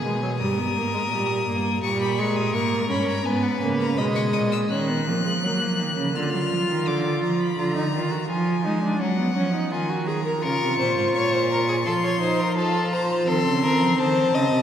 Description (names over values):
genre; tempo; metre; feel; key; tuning
classical, baroque-style fugue for string quartet; 84 BPM; 4/4; straight; G# minor, Eb minor from 4.7 s; A4 = 441 Hz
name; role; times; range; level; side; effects
rich violin; melody; 0.0-14.6 s; Gb5 to Gb6; -28 LUFS; left 6 dB; none
rich violin; second line; 0.0-4.7, 10.4-14.6 s; G#4 to Eb5; -26 LUFS; left 2 dB; none
rich viola; accompaniment; 0.0-14.6 s; F#3 to Bb4; -25 LUFS; right 1 dB; none
rich cello; bass; 0.0-14.6 s; G2 to Ab3; -25 LUFS; right 2 dB; none
room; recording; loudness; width
wet church reverb, RT60 2.7 s; none; -20 LUFS; side -9 dB against mid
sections
0.0-4.7 A section; 4.7-14.6 B section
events
none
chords
0.4 D#/G; 1.8 D#7/A# (rootless); 3.3 G#m; 4.7 Ebm; 6.2 Bb/D (rootless); 7.6 Bb7/D; 9.0 Ebm; 10.4 Bbm; 11.9 F; 13.3 F7